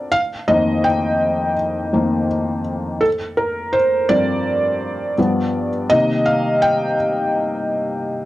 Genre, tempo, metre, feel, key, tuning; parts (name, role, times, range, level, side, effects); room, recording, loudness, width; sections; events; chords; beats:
hip hop; 83 BPM; 4/4; swing 56% on 16ths; C minor; A4 = 440 Hz
felt-muted upright piano; solo; 0.0-8.3 s; F2 to G5; -16 LUFS; equal
wet studio reverb, RT60 0.5 s; -16 LUFS; side -16 dB against mid
0.0-8.3 A section
felt piano solo 0.0-8.3
0.1 F9sus4; 3.0 G7sus4; 5.2 G7; 5.9 Cm7
| 0.11 0.84 1.56 2.28 | 3.00 3.73 4.45 5.17 | 5.90 6.62 7.34 8.06